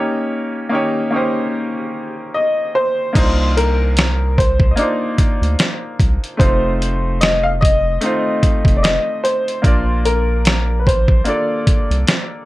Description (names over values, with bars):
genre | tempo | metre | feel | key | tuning
lo-fi hip hop | 74 BPM | 4/4 | swing 55% on 16ths | C minor | A4 = 440 Hz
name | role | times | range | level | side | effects
clear upright piano | accompaniment | 0.0-12.5 s | A3 to D5 | -21 LUFS | equal | cassette tape, low-pass filter, plate reverb
warm upright piano | melody | 2.3-12.0 s | Bb4 to F5 | -19 LUFS | left 1 dB | plate reverb
round analog bass | bass | 3.2-12.0 s | F1 to D2 | -18 LUFS | equal | none
dusty soul sampler-style drum kit | drums | 3.2-12.3 s | crash cymbal, hi-hat, kick drum, snare drum | -15 LUFS | equal | none
room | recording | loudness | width
light reverb | cassette tape | -14 LUFS | side -17 dB against mid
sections
0.0-3.2 A section; 3.2-12.5 B section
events
none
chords
0.0 Eb7; 3.2 Cm11; 6.4 F7; 9.6 Bbmaj7